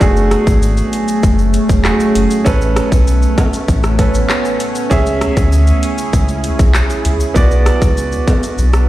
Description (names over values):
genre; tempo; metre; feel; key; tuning
dancehall; 98 BPM; 4/4; straight; C# phrygian; A4 = 439 Hz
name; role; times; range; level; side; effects
clear concert grand piano; accompaniment; 0.0-8.9 s; A3 to E5; -18 LUFS; right 3 dB; sidechain pumping
deep dark ambient pad; sustained chords; 0.0-8.9 s; C#3 to G#4; -20 LUFS; left 1 dB; chorus, built-in reverb, sidechain pumping
sub bass with octave; bass; 0.0-8.9 s; E1 to D2; -14 LUFS; equal; none
island pop drum kit; drums; 0.0-8.9 s; handclaps, hi-hat, kick drum, rim click, shaker; -15 LUFS; equal; overdrive
egg shaker and timbales; percussion; 0.0-8.9 s; none; -30 LUFS; equal; none
room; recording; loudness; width
light reverb, small room ambience; played on a big sound system in a bare room, stone room reverb; -11 LUFS; side -15 dB against mid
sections
0.0-8.9 A section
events
kick muted 8.6-8.9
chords
0.0 F#madd9; 2.5 Aadd9; 4.9 C#m; 7.4 Bm